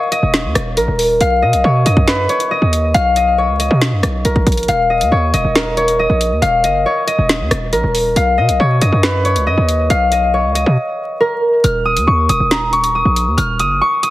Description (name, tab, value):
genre	hip hop, drill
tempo	138 BPM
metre	4/4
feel	half-time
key	Eb minor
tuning	A4 = 444 Hz
part	concert harp	melody	0.0-14.1 s	Bb4 to F6	-14 LUFS	left 1 dB	digital delay
part	drill drum kit	drums	0.1-14.1 s	hi-hat, kick drum, rim click, snare drum	-18 LUFS	equal	none
part	hard-hitting 808-style bass	bass	0.2-13.8 s	Eb1 to B2	-16 LUFS	equal	none
room	light reverb, digital ambience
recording	heavily compressed radio sound, multiband compression, vinyl crackle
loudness	-12 LUFS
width	side -16 dB against mid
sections	0.0-11.6 A section; 11.6-14.1 B section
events	drum fill 4.2-4.7; break 10.8-11.6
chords	0.0 Eb5; 1.2 B; 4.7 Eb5; 8.2 B; 11.6 Eb5